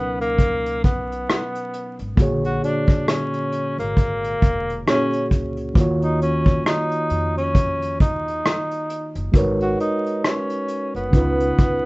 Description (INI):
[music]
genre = lo-fi hip hop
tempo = 67 BPM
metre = 4/4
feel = swing 57% on 16ths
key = unclear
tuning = A4 = 440 Hz
[part]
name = breathy tenor saxophone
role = melody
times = 0.0-11.9 s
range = A#3 to F#4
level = -24 LUFS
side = equal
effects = low-pass filter
[part]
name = mellow reed electric piano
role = accompaniment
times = 0.0-11.9 s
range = A#2 to C#5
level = -24 LUFS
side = right 1 dB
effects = cassette tape, low-pass filter
[part]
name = upright bass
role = bass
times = 0.0-11.9 s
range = E1 to E#2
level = -28 LUFS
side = equal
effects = none
[part]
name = vintage brush drum kit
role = drums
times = 0.2-11.8 s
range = hi-hat, kick drum, rim click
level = -18 LUFS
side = equal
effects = none
[sound]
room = light reverb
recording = rough home demo mix, vinyl crackle, nothing above 7.9 kHz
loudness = -18 LUFS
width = side -24 dB against mid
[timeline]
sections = 0.0-11.9 A section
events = none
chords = 0.0 Bmaj7; 2.2 A#7alt; 5.8 D#m9; 9.3 G#m11; 11.1 C#9